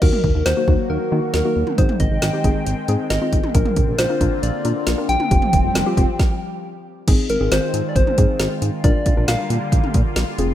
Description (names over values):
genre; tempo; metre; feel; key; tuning
synth-pop; 136 BPM; 4/4; straight; Bb mixolydian; A4 = 440 Hz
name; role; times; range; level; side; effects
soft struck synth lead; melody; 0.0-9.9 s; Bb4 to G5; -23 LUFS; left 1 dB; chorus, tremolo, tape echo
soft round pluck; accompaniment; 0.0-10.5 s; Bb3 to Bb4; -26 LUFS; left 3 dB; chorus
phased analog pad; sustained chords; 0.0-10.5 s; D3 to G5; -27 LUFS; equal; phaser, chorus
chorused synth bass; bass; 0.0-10.5 s; F1 to Eb3; -21 LUFS; equal; none
deep house drum kit; drums; 0.0-10.5 s; crash cymbal, hi-hat, kick drum, snare drum, toms; -19 LUFS; equal; none
swell; sound effects; 5.1-6.2 s; none; -33 LUFS; equal; none
room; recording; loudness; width
light reverb; rough home demo mix; -16 LUFS; side -12 dB against mid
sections
0.0-7.1 A section; 7.1-10.5 B section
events
swell 5.1-7.1; stop 6.2-7.1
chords
0.0 Ebm; 1.8 Abmaj7; 3.5 Bbadd9; 5.3 Fsus2; 7.1 Ab6; 8.8 Bb6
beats
| 0.02 0.46 0.90 1.34 | 1.78 2.22 2.67 3.11 | 3.55 3.99 4.43 4.87 | 5.31 5.75 6.19 6.63 | 7.08 7.52 7.96 8.40 | 8.84 9.28 9.72 10.16